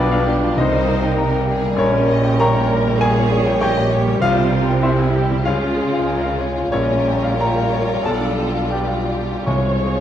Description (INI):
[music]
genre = classical, romantic movement for piano and orchestra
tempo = 77-101 BPM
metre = 4/4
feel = rubato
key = unclear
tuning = A4 = 439 Hz
[part]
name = clear baby grand piano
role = melody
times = 0.0-10.0 s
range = Bb1 to Db6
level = -20 LUFS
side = left 2 dB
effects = none
[part]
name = rich studio violin section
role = melody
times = 0.0-10.0 s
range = F4 to Eb5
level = -30 LUFS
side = left 4 dB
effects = none
[part]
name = rich studio violin section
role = second line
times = 0.0-10.0 s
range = G3 to F4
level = -26 LUFS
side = left 1 dB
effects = none
[part]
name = dark studio viola section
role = accompaniment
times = 0.0-10.0 s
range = Db4 to Db5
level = -25 LUFS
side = right 2 dB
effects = none
[part]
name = mellow French horn section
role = sustained chords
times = 0.0-10.0 s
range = G3 to Bb4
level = -26 LUFS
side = left 2 dB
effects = none
[part]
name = rich studio cello section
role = bass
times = 0.0-10.0 s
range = Bb2 to Db3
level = -24 LUFS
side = right 2 dB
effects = none
[part]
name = rich studio double bass section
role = bass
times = 0.0-10.0 s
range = Bb1 to Db2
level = -23 LUFS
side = right 3 dB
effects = none
[part]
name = timpani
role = percussion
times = 0.6-5.1, 9.5-10.0 s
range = C3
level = -25 LUFS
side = equal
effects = none
[sound]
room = wet recital hall reverb, RT60 1.3 s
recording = dark, warm production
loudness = -15 LUFS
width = side -10 dB against mid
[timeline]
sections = 0.0-10.0 A section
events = none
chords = 0.0 G7/B; 0.6 Cm7; 1.8 Gdim/Bb; 4.2 C; 5.5 Db; 6.7 Gm7b5/Bb; 8.0 G7/B; 9.5 Fm/C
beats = 0.57 1.17 | 1.77 2.41 3.02 3.62 | 4.22 4.83 5.45 6.08 | 6.72 7.40 8.04 8.71 | 9.46